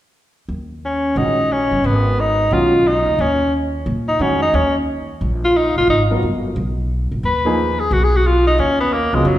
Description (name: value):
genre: jazz, small-group swing and bop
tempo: 178 BPM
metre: 4/4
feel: swing 63% on 8ths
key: Eb minor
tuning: A4 = 441 Hz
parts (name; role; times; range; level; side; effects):
- upright bass; bass; 0.5-9.4 s; G1 to Bb2; -20 LUFS; equal; none
- warm tenor saxophone; melody; 0.9-9.4 s; Gb3 to Cb5; -16 LUFS; equal; none
- warm baby grand piano; accompaniment; 1.2-9.4 s; Db3 to Bb4; -22 LUFS; right 1 dB; none
room: wet recital hall reverb, RT60 1.8 s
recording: recorded in a church or concert hall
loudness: -15 LUFS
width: side -13 dB against mid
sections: 0.5-9.4 A section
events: none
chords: 0.5 Ebm7; 1.8 Abm7; 3.2 Eb7(no3); 5.9 Abm; 8.6 Ebm7